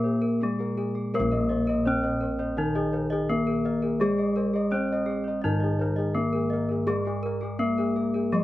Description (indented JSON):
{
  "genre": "Javanese gamelan",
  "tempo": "84 BPM",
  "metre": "4/4",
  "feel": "straight",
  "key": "unclear",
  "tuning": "A4 = 440 Hz",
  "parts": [
    { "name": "gamelan-type bronze metallophone", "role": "melody", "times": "0.0-8.4 s", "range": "Ab3-40c to Eb4-20c", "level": "-28 LUFS", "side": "left 2 dB", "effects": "none" },
    { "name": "gamelan-type bronze metallophone", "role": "accompaniment", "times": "0.0-8.4 s", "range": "Eb3-20c to Bb3", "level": "-31 LUFS", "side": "right 2 dB", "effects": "slapback echo" },
    { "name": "gamelan-type bossed gongs", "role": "arpeggios", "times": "0.0-8.4 s", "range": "Ab4-40c to Eb5-20c", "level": "-32 LUFS", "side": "left 2 dB", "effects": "none" },
    { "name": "gamelan-type bronze metallophone", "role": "arpeggios", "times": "0.0-8.4 s", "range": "Ab4-40c to Eb5-20c", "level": "-35 LUFS", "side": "right 4 dB", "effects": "slapback echo" },
    { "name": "gamelan-type bossed gongs", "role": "bass", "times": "0.0-8.4 s", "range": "Bb1 to Bb4", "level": "-31 LUFS", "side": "equal", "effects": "none" }
  ],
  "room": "little or no reverb",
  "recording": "recorded outdoors, with no room sound",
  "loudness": "-24 LUFS",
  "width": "side -15 dB against mid",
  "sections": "0.0-1.1 A section; 1.1-8.4 B section",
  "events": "none",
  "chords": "none"
}